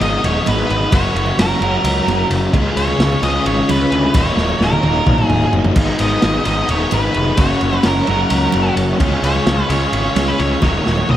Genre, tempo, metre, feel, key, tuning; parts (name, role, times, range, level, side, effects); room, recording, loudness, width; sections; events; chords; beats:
psychedelic rock; 260 BPM (eighths); 7/8; straight; A4 = 440 Hz
octave-fuzz lead guitar; melody; 0.0-11.2 s; Bb4 to Eb5; -20 LUFS; right 1 dB; distortion, analog delay
biting overdriven guitar; riff; 0.0-11.2 s; Eb2 to Ab4; -18 LUFS; left 1 dB; rotary speaker
fuzz picked electric bass; bass; 0.0-11.2 s; Eb1 to D2; -20 LUFS; equal; overdrive
crunchy breakbeat drum kit; drums; 0.0-11.2 s; crash cymbal, kick drum, ride cymbal, snare drum, toms; -19 LUFS; equal
congas; percussion; 0.0-11.2 s; -29 LUFS; right 8 dB
overdriven combo organ; sustained chords; 5.8-11.2 s; Ab4 to Db6; -28 LUFS; right 3 dB
moderate concert hall reverb, RT60 1.9 s; -13 LUFS; side -12 dB against mid
0.0-11.2 A section
drum fill 4.4-5.8, 10.6-11.2
0.0 Abm; 0.9 Gb; 2.5 Db; 4.1 Ebm7; 5.8 Abm; 7.4 Gb; 9.0 Db; 10.6 Ebm7
0.01 0.24 0.47 0.70 | 0.93 1.16 1.39 1.62 1.85 2.08 2.31 | 2.54 2.77 3.00 3.23 3.46 3.69 3.92 | 4.15 4.38 4.61 4.84 5.07 5.30 5.53 | 5.76 6.00 6.23 6.46 6.69 6.92 7.15 | 7.38 7.61 7.85 8.08 8.31 8.54 8.77 | 9.00 9.23 9.47 9.70 9.93 10.16 10.39 | 10.63 10.86 11.09